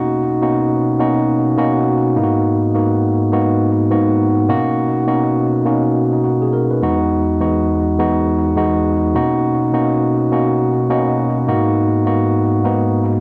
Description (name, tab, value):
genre	R&B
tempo	103 BPM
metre	4/4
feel	swing 60% on 16ths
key	G# minor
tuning	A4 = 441 Hz
part	bright tine electric piano	solo	0.0-13.2 s	E2 to B4	-16 LUFS	equal	cassette tape, analog delay
room	wet studio reverb, RT60 0.5 s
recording	home recording on cassette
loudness	-16 LUFS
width	mono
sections	0.0-2.2 A section; 2.2-13.2 B section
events	none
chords	0.0 Bmaj9; 2.2 G#m9; 4.5 Bmaj9; 6.8 Emaj9; 9.1 Bmaj9; 11.5 G#m9